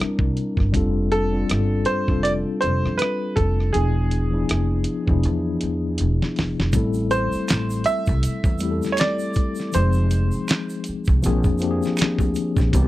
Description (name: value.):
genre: R&B, neo-soul.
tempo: 80 BPM.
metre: 4/4.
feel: swing 57% on 16ths.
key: A minor.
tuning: A4 = 439 Hz.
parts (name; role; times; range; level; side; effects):
clear grand piano; melody; 0.0-10.8 s; G#4 to E5; -25 LUFS; right 2 dB; none.
mellow tine electric piano; accompaniment; 0.0-12.9 s; E3 to Bb4; -24 LUFS; left 3 dB; fast stereo tremolo.
upright bass; bass; 0.0-12.9 s; E1 to F2; -22 LUFS; right 1 dB; none.
dusty soul sampler-style drum kit; drums; 0.0-12.9 s; handclaps, hi-hat, kick drum, rim click, snare drum; -22 LUFS; right 1 dB; none.
egg shaker and finger snaps; percussion; 6.7-12.9 s; none; -37 LUFS; right 4 dB; none.
room: little or no reverb.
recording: dry, close 1970s-style studio recording.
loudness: -19 LUFS.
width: side -16 dB against mid.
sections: 0.0-6.7 A section; 6.7-12.9 B section.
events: drum fill 6.0-6.7.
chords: 0.0 C9; 0.7 F69; 3.7 E7b9; 6.7 Am7; 9.7 Fm7; 11.2 Bb9.